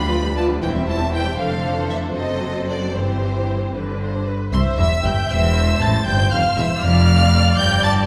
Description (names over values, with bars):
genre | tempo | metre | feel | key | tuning
quick classical-period movement for string orchestra | 78 BPM (dotted quarters) | 6/8 | straight | C major | A4 = 440 Hz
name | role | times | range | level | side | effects
rich symphonic violin section | melody | 0.0-7.9 s | C5 to A6 | -26 LUFS | equal | none
warm symphonic violin section | second line | 0.0-7.9 s | E4 to A5 | -27 LUFS | equal | none
rich symphonic viola section | accompaniment | 0.0-8.1 s | D3 to E5 | -28 LUFS | equal | none
clear chamber double bass section | bass | 0.0-8.1 s | E1 to D2 | -24 LUFS | equal | none
rich symphonic cello section | bass | 0.0-8.1 s | C2 to A2 | -24 LUFS | equal | none
room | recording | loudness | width
wet recital hall reverb, RT60 1.6 s | recorded in a church or concert hall | -19 LUFS | mono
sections
0.0-4.5 A section; 4.5-8.1 B section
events
none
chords
0.0 G7/D; 0.6 C/E; 1.4 Dm7/F; 2.2 F#dim7; 2.9 C/G; 3.7 G; 4.5 C; 5.3 Am/E; 6.1 F5